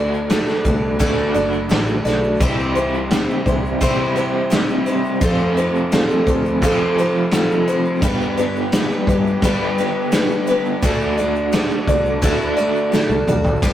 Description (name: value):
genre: folk rock and heartland rock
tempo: 86 BPM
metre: 4/4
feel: straight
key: unclear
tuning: A4 = 440 Hz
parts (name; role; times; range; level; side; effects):
- picked twelve-string acoustic guitar; accompaniment; 0.0-13.7 s; G2 to D5; -20 LUFS; equal; none
- crunchy overdriven guitar; riff; 0.0-13.7 s; F2 to G4; -22 LUFS; right 1 dB; tremolo
- fingered electric bass; bass; 0.0-13.7 s; F#1 to G3; -25 LUFS; equal; none
- egg shaker; percussion; 0.1-13.7 s; none; -42 LUFS; right 5 dB; none
- loose indie drum kit; drums; 0.3-13.7 s; crash cymbal, kick drum, ride cymbal, snare drum, toms; -20 LUFS; equal; none
room: moderate small room reverb, RT60 0.5 s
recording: rough rehearsal-room recording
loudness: -16 LUFS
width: side -11 dB against mid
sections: 0.0-13.6 A section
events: drum fill 12.9-13.6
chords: 0.0 Dadd9; 2.4 C; 5.2 F; 8.0 G; 10.8 Dadd9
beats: 0.30 1.01 1.71 | 2.41 3.11 3.81 4.51 | 5.22 5.92 6.62 7.32 | 8.02 8.72 9.42 10.12 | 10.82 11.52 12.22 12.92 | 13.62